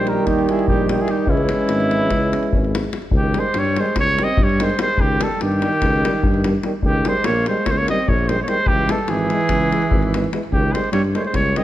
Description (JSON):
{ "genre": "balkan folk, Balkan brass band", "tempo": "292 BPM (eighths)", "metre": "9/8", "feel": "straight", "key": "unclear", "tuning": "A4 = 440 Hz", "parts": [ { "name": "mellow trumpet", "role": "melody", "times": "0.0-11.6 s", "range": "E4 to D#5", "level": "-22 LUFS", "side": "equal", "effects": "none" }, { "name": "warm alto saxophone", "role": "second line", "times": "0.0-11.6 s", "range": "D#3 to G4", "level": "-25 LUFS", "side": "right 3 dB", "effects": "none" }, { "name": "clear trombone", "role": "accompaniment", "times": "0.0-11.6 s", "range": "D#3 to E3", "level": "-28 LUFS", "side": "right 5 dB", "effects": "none" }, { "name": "warm euphonium", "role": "accompaniment", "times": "0.0-11.6 s", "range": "G3 to G#3", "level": "-26 LUFS", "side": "left 3 dB", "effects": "none" }, { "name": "mellow tuba", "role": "bass", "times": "0.0-11.6 s", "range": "G#1 to G2", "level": "-22 LUFS", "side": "equal", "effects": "none" }, { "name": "davul", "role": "percussion", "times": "0.1-11.6 s", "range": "none", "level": "-22 LUFS", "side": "left 1 dB", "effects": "none" } ], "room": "light reverb", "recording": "none", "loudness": "-16 LUFS", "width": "side -13 dB against mid", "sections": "0.0-3.1 A section; 3.1-11.6 B section", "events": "none", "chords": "0.0 D#; 1.3 C#m; 3.1 A7#11/C# (rootless); 6.8 D#; 8.7 C#m; 10.5 D#13/C#" }